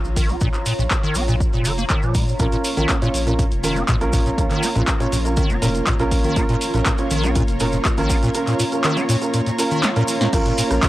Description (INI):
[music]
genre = acid house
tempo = 121 BPM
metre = 4/4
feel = straight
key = Bb minor pentatonic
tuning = A4 = 435 Hz
[part]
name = saturated sub bass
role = bass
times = 0.0-10.8 s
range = F1 to Bb2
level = -24 LUFS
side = equal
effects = sidechain pumping
[part]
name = maracas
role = percussion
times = 0.0-10.9 s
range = none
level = -31 LUFS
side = equal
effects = none
[part]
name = granular cloud pad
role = texture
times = 0.0-10.9 s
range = F4 to Bb5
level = -29 LUFS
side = equal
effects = built-in reverb, sidechain pumping
[part]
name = acid bass, square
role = riff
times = 0.2-10.9 s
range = Bb2 to Db4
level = -22 LUFS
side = equal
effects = ensemble chorus
[part]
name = electronic kick drum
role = drums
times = 0.2-10.9 s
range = none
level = -21 LUFS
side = equal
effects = none
[part]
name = punchy analog drum machine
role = drums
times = 0.2-10.9 s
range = crash cymbal, handclaps, hi-hat, rim click, snare drum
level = -25 LUFS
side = equal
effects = none
[part]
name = string machine, full ensemble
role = sustained chords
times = 2.4-10.9 s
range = Bb3 to Db5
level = -29 LUFS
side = left 1 dB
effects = ensemble chorus, sidechain pumping
[part]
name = dark baby grand piano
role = stabs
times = 2.4-10.9 s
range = Db4 to Db5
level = -23 LUFS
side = right 2 dB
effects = analog delay
[sound]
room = little or no reverb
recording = dry, gritty hardware recording, transformer saturation, cassette tape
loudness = -17 LUFS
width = side -16 dB against mid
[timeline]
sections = 0.0-10.3 A section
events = drum fill 9.8-10.3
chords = 0.0 Bbm